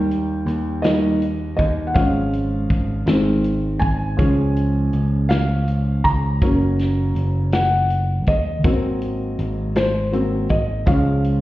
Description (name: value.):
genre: six-eight pop ballad.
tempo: 54 BPM (dotted quarters).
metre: 6/8.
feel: straight.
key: Db major.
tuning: A4 = 441 Hz.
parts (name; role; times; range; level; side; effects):
felt-muted upright piano; accompaniment; 0.0-11.4 s; Eb3 to Bb5; -20 LUFS; equal; none.
modern bright picked electric bass; bass; 0.0-11.4 s; Gb1 to Eb2; -21 LUFS; equal; none.
natural country drum kit; drums; 0.1-11.4 s; hi-hat, kick drum, snare drum; -21 LUFS; equal; none.
room: light reverb, studio reverb.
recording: heard muffled through a wall, stone room reverb, EQ.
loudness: -17 LUFS.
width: side -16 dB against mid.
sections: 0.0-11.4 A section.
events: felt piano solo 0.0-11.4.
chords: 0.0 Eb; 2.0 Db/Ab; 3.1 Ab; 4.2 Db; 6.4 Gb; 8.6 Ab7; 10.9 Db.